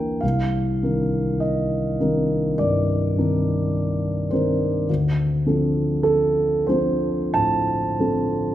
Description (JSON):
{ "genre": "classical, impressionist solo piano", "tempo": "44-52 BPM", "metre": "4/4", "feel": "rubato", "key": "unclear", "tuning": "A4 = 441 Hz", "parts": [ { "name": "warm concert grand piano", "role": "solo", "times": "0.0-8.5 s", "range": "C2 to A5", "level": "-19 LUFS", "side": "equal", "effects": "none" } ], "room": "wet recital hall reverb, RT60 1.4 s", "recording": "none", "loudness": "-19 LUFS", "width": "side -12 dB against mid", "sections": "0.0-8.5 A section", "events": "none", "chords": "0.2 Cm9; 4.9 Dm7" }